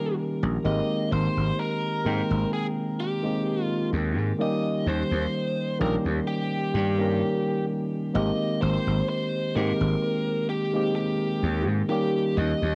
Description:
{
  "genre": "vaporwave",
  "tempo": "64 BPM",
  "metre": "4/4",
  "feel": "straight",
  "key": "Ab major",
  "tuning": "A4 = 440 Hz",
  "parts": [
    { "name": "biting lead guitar", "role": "melody", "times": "0.0-12.8 s", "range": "G4 to Eb5", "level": "-32 LUFS", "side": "equal", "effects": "overdrive, cassette tape, tape echo" },
    { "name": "tine electric piano", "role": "accompaniment", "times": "0.0-12.8 s", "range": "Eb3 to G5", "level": "-29 LUFS", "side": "equal", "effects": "subtle chorus" },
    { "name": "gritty slap bass", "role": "bass", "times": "0.4-12.8 s", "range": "Ab1 to Ab2", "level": "-28 LUFS", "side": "equal", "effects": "overdrive" }
  ],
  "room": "light reverb",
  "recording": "home recording on cassette",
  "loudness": "-26 LUFS",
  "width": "mono",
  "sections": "0.0-8.2 A section; 8.2-12.8 B section",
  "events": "none",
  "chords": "0.0 Eb7; 0.7 Abmaj9; 4.4 Eb7; 8.2 Abmaj9; 11.9 Eb7"
}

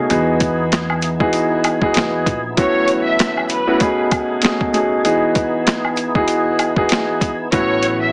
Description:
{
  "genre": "hip hop, boom-bap hip-hop",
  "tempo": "97 BPM",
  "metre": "4/4",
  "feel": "swing 58% on 16ths",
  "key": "E major",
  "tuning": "A4 = 440 Hz",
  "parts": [
    { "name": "warm upright piano", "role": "accompaniment", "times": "0.0-8.1 s", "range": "A2 to G#4", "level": "-20 LUFS", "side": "equal", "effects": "cassette tape, high-pass filter, low-pass filter" },
    { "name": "tonewheel organ", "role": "sustained chords", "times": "0.0-8.1 s", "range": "C#3 to G#4", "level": "-28 LUFS", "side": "equal", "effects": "overdrive, chorus vibrato, slow rotary speaker, high-pass filter, low-pass filter" },
    { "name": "upright bass", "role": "bass", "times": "0.1-2.5, 7.5-8.1 s", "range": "A1 to E2", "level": "-26 LUFS", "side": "equal", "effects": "none" },
    { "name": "boom bap sampler-style drum kit", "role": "drums", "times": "0.1-8.0 s", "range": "hi-hat, kick drum, snare drum", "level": "-21 LUFS", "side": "equal", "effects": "none" },
    { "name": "tube shaker and woodblock", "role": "percussion", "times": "0.1-8.0 s", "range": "none", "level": "-28 LUFS", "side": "equal", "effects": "none" },
    { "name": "warm symphonic violin section", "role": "melody", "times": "2.6-8.1 s", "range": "B4 to E5", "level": "-21 LUFS", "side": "equal", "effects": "high-pass filter, low-pass filter, tape echo" }
  ],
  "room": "moderate studio reverb, RT60 0.6 s",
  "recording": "heavily compressed radio sound, small speaker sound",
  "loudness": "-17 LUFS",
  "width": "mono",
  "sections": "0.0-8.1 A section",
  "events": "none",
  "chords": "0.1 Emaj7; 2.6 A6; 3.8 B13; 5.0 Emaj7; 7.5 A6"
}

